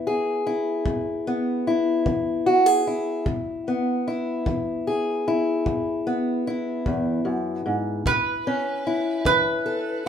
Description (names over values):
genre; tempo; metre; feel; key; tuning
acoustic country blues, solo or duo; 50 BPM (dotted quarters); 12/8; straight; E major; A4 = 440 Hz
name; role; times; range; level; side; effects
fingerpicked steel-string acoustic guitar; accompaniment; 0.0-10.1 s; E2 to A4; -22 LUFS; left 1 dB; none
kick drum; drums; 0.9-9.4 s; none; -29 LUFS; equal; none
lap resonator guitar; melody; 8.1-10.1 s; B4; -23 LUFS; right 3 dB; none
room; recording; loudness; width
moderate large studio reverb, RT60 0.8 s; band playing live in one room; -21 LUFS; side -8 dB against mid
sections
0.0-10.1 A section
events
none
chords
0.0 E; 8.1 A